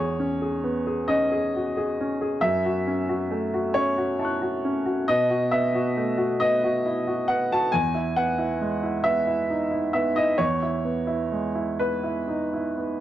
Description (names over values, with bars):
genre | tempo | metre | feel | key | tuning
neoclassical minimalist piano | 45 BPM (dotted quarters) | 6/8 | rubato | E major | A4 = 440 Hz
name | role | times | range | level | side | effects
clear upright piano | solo | 0.0-13.0 s | E2 to F#6 | -22 LUFS | equal | none
room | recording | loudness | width
light reverb | dry, close 1970s-style studio recording | -22 LUFS | side -12 dB against mid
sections
0.0-13.0 A section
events
none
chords
0.0 C#m7/E; 2.4 F#m7; 5.1 B7; 7.7 Eadd9